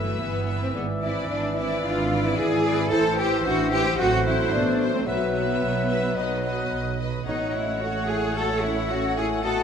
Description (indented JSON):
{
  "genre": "classical, dramatic, fast romantic movement for symphony orchestra",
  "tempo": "110 BPM",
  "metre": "4/4",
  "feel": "straight",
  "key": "unclear",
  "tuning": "A4 = 440 Hz",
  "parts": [
    { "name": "clear symphonic violin section", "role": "melody", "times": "0.0-9.6 s", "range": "C5 to F#5", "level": "-34 LUFS", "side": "left 5 dB", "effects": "none" },
    { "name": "clear symphonic violin section", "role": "second line", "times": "0.0-9.6 s", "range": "B4 to D#5", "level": "-35 LUFS", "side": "left 2 dB", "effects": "none" },
    { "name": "mellow clarinet", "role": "second line", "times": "0.0-9.6 s", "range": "B4 to F#5", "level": "-34 LUFS", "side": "left 3 dB", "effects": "none" },
    { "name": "mellow concert flute", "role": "second line", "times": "0.0-9.6 s", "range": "A4 to A5", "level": "-33 LUFS", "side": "left 3 dB", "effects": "none" },
    { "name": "mellow cor anglais", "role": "second line", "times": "0.0-9.6 s", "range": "D#5 to F#5", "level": "-34 LUFS", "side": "left 1 dB", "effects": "none" },
    { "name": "rich symphonic viola section", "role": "accompaniment", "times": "0.0-9.6 s", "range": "E3 to B3", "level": "-35 LUFS", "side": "right 2 dB", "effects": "none" },
    { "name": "warm bassoon", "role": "accompaniment", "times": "0.0-9.6 s", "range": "E3 to A3", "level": "-32 LUFS", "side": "right 2 dB", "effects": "none" },
    { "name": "dark French horn section", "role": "sustained chords", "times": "0.0-9.6 s", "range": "F#3 to F#4", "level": "-30 LUFS", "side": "left 4 dB", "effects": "none" },
    { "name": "rich chamber double bass section", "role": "bass", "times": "0.0-9.6 s", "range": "G1 to B1", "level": "-30 LUFS", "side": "right 4 dB", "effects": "none" },
    { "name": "rich symphonic cello section", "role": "bass", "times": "0.0-9.6 s", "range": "A3 to A4", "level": "-27 LUFS", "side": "right 2 dB", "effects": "none" }
  ],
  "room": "moderate scoring stage reverb, RT60 1.7 s",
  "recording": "none",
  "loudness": "-22 LUFS",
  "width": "side -7 dB against mid",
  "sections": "0.0-9.6 A section",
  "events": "none",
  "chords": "0.0 Em/G; 0.8 E7/G#; 2.9 Am; 4.0 F#dim/A; 5.1 Bsus4; 7.3 F#m/A"
}